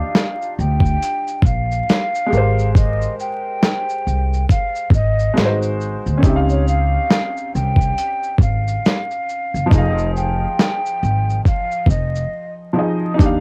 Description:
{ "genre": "lo-fi hip hop", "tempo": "69 BPM", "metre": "4/4", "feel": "swing 58% on 16ths", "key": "unclear", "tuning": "A4 = 440 Hz", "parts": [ { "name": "breathy mellow silver concert flute", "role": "melody", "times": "0.0-12.5 s", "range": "Db5 to G5", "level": "-25 LUFS", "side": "equal", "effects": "low-pass filter, cassette tape" }, { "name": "bright upright piano", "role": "accompaniment", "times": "0.0-13.4 s", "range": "F3 to F5", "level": "-26 LUFS", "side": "equal", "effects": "cassette tape, low-pass filter" }, { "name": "dusty soul sampler-style drum kit", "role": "drums", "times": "0.1-13.4 s", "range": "handclaps, hi-hat, kick drum, shaker, snare drum", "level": "-18 LUFS", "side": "equal", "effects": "overdrive, cassette tape" }, { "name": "upright bass", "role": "bass", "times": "0.6-13.4 s", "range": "F1 to Eb2", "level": "-21 LUFS", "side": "equal", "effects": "none" } ], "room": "light reverb", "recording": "home recording on cassette, vinyl crackle", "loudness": "-18 LUFS", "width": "mono", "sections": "0.0-13.4 A section", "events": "break 12.3-13.2", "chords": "0.0 Ebmaj9; 2.3 Abmaj9; 5.4 Ab7; 6.2 Dbmaj9#11; 9.7 Fm7" }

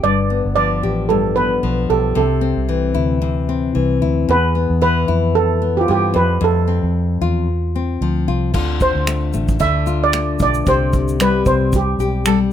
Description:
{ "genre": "acoustic pop", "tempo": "113 BPM", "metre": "4/4", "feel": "swing 55% on 16ths", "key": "unclear", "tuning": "A4 = 440 Hz", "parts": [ { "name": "steel pan", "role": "melody", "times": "0.0-12.2 s", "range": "F4 to E5", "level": "-18 LUFS", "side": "right 4 dB", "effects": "none" }, { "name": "nylon-string guitar", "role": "accompaniment", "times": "0.0-12.5 s", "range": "E2 to G4", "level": "-19 LUFS", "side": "left 6 dB", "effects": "none" }, { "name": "vintage muted fingered electric bass", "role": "bass", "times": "0.0-12.5 s", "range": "G1 to G2", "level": "-20 LUFS", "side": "right 1 dB", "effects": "none" }, { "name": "natural country drum kit", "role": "drums", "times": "8.5-12.4 s", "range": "crash cymbal, finger snaps, kick drum, shaker", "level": "-22 LUFS", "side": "right 1 dB", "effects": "none" }, { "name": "warm cello", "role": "second line", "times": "12.3-12.4 s", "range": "A4", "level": "-22 LUFS", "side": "right 7 dB", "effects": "none" } ], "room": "little or no reverb", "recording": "close, detailed microphones", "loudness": "-15 LUFS", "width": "side -10 dB against mid", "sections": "0.0-8.5 A section; 8.5-12.5 B section", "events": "none", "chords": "0.0 G7; 2.2 C; 4.3 Em; 6.2 F; 8.5 Dm7; 10.7 C5" }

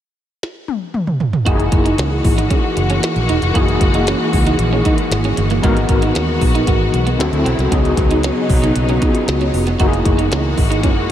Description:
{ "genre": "polished 1980s jazz-funk pop", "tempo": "115 BPM", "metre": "4/4", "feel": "straight", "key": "unclear", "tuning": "A4 = 440 Hz", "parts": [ { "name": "glitchy drum kit", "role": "drums", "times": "0.4-11.0 s", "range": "hi-hat, kick drum, snare drum, toms", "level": "-19 LUFS", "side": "equal", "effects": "none" }, { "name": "overdriven tine electric piano", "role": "accompaniment", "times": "1.4-11.1 s", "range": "A#3 to A#4", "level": "-19 LUFS", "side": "left 1 dB", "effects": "medium tremolo, ensemble chorus" }, { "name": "warm studio string section", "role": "sustained chords", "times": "1.5-11.1 s", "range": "C#3 to F#4", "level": "-21 LUFS", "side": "left 1 dB", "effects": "none" }, { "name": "electric guitar at the edge of break-up", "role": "riff", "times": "1.5-10.9 s", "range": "G#3 to F#4", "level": "-23 LUFS", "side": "right 5 dB", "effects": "wide subtle chorus" }, { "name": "vintage muted fingered electric bass", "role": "bass", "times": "1.5-11.1 s", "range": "E1 to D#2", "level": "-19 LUFS", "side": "equal", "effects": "none" } ], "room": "moderate huge ambient reverb, RT60 7.9 s", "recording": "dreamy mix soaked in reverb", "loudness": "-13 LUFS", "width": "side -11 dB against mid", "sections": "0.0-1.5 A section; 1.5-11.1 B section", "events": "drum fill 0.4-1.5", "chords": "0.0 N.C.; 1.5 F#13; 5.6 G#m7; 7.2 D9; 7.7 C#9sus4; 9.8 F#13" }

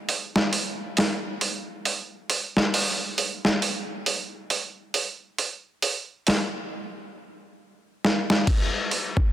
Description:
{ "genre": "trip hop", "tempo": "68 BPM", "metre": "4/4", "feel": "swing 58% on 16ths", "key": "none", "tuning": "none", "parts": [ { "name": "dusty soul sampler-style drum kit", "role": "drums", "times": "0.1-9.3 s", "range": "crash cymbal, hi-hat, kick drum, snare drum", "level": "-23 LUFS", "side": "equal", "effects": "overdrive" } ], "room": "moderate lush hall reverb, RT60 2.9 s", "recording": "dense, heavily limited modern master", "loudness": "-23 LUFS", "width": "side -12 dB against mid", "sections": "0.0-8.5 A section", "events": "drum fill 8.0-8.5", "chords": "none" }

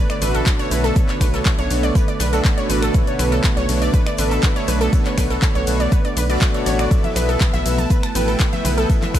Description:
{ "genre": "progressive house", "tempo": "121 BPM", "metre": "4/4", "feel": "straight", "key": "B minor", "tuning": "A4 = 440 Hz", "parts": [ { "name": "warm analog pad", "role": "sustained chords", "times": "0.0-9.2 s", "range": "D3 to B3", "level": "-25 LUFS", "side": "right 4 dB", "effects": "chorus, sidechain pumping" }, { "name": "sub drop", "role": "sound effects", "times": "0.0-1.0 s", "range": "none", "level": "barely audible", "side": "none", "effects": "none" }, { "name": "wide unison pluck", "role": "arpeggios", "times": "0.1-9.2 s", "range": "A4 to A5", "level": "-24 LUFS", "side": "equal", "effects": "sidechain pumping, ping-pong delay" }, { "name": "house drum kit", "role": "drums", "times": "0.1-9.2 s", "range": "finger snaps, handclaps, hi-hat, ride cymbal, shaker", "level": "-26 LUFS", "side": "left 1 dB", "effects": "sidechain pumping on hats, sidechain pumping on perc, sidechain pumping on cymbals" }, { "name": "jazz brush drum kit", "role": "drums", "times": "0.1-9.2 s", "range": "hi-hat, shaker, snare drum", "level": "-36 LUFS", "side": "equal", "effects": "none" }, { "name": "soft supersaw", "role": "stabs", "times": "0.2-9.2 s", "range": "B2 to G5", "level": "-24 LUFS", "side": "left 1 dB", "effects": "lush chorus, sidechain pumping, ping-pong delay" }, { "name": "tight sequencer bass", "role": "bass", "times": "0.2-9.2 s", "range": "A1 to B1", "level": "-21 LUFS", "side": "equal", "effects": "sidechain pumping" }, { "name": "electronic kick drum", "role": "drums", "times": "0.5-9.2 s", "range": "none", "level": "-17 LUFS", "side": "equal", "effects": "none" }, { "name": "congas", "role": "percussion", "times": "7.0-9.1 s", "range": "none", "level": "-30 LUFS", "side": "left 2 dB", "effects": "sidechain pumping on perc" } ], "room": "studio reverb", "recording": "none", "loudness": "-16 LUFS", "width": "side -11 dB against mid", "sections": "0.0-9.2 A section", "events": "impact 0.0-1.0", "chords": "0.0 Bm9; 6.9 Asus2" }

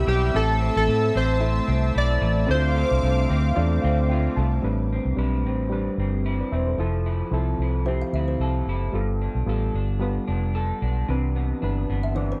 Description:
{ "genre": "indie pop", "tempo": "112 BPM", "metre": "4/4", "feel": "swing 55% on 16ths", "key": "unclear", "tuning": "A4 = 436 Hz", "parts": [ { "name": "chorused retro synth keys", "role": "melody", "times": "0.0-4.1 s", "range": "G4 to D5", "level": "-28 LUFS", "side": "equal", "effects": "analog chorus, plate reverb, analog delay" }, { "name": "electric guitar through a small old amp", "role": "accompaniment", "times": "0.0-12.4 s", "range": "G2 to A4", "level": "-32 LUFS", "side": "equal", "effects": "analog chorus, warbly pitch drift" }, { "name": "reed electric piano", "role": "accompaniment", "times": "0.0-12.4 s", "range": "E3 to A5", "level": "-32 LUFS", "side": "equal", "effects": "none" }, { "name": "lush unison pad", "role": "sustained chords", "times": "0.0-4.6 s", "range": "E5 to E6", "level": "-34 LUFS", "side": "equal", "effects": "chorus, plate reverb" }, { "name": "vintage muted fingered electric bass", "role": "bass", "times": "0.0-12.3 s", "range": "E1 to A2", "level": "-26 LUFS", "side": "equal", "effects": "none" }, { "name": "kalimba", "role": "second line", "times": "7.9-12.4 s", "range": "C5 to F5", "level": "-37 LUFS", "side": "equal", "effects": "subtle chorus, analog delay" } ], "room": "light reverb", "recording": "none", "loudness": "-23 LUFS", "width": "mono", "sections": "0.0-4.6 A section; 4.6-12.4 B section", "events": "reed electric piano fill 3.6-4.6", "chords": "0.4 Am; 2.5 Dm7; 4.6 Am11; 6.8 Fmaj7; 8.9 G9; 11.1 Cmaj9" }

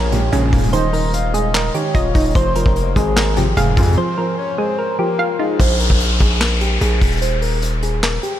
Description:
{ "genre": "hip hop, trap", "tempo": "148 BPM", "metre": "4/4", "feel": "half-time", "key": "unclear", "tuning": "A4 = 442 Hz", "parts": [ { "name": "soft electric-piano-like synth keys", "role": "melody", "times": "0.0-8.4 s", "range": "Eb4 to C5", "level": "-22 LUFS", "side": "right 1 dB", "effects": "chorus, low-pass filter, ping-pong delay" }, { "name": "breathy flute-like synth lead", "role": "second line", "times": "0.0-5.6 s", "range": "Ab4 to F5", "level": "-25 LUFS", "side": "left 4 dB", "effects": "chorus, ping-pong delay" }, { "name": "hollow square pluck", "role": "accompaniment", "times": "0.0-5.6 s", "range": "Bb2 to F5", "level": "-23 LUFS", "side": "right 3 dB", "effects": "chorus, low-pass filter" }, { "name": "distorted 808-style bass", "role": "bass", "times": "0.0-8.2 s", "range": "Eb1 to F2", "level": "-18 LUFS", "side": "equal", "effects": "distortion" }, { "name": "big bright polysynth", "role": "stabs", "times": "0.1-0.7, 3.4-4.0 s", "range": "F2 to Db3", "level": "-25 LUFS", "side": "left 1 dB", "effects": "none" }, { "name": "vintage brush drum kit", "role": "drums", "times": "0.1-8.3 s", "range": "handclaps, hi-hat, kick drum, snare drum", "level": "-20 LUFS", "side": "equal", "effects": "none" }, { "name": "downlifter", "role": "sound effects", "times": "5.6-8.4 s", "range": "none", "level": "-23 LUFS", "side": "left 2 dB", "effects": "none" } ], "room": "light reverb, studio reverb", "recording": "none", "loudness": "-14 LUFS", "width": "side -12 dB against mid", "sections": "0.0-5.6 A section; 5.6-8.4 B section", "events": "break 4.0-5.6; filter sweep 5.6-8.4", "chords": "0.0 Bbm7; 0.7 Ebsus4; 2.4 Fm; 5.6 Ebadd11; 7.2 Eb6" }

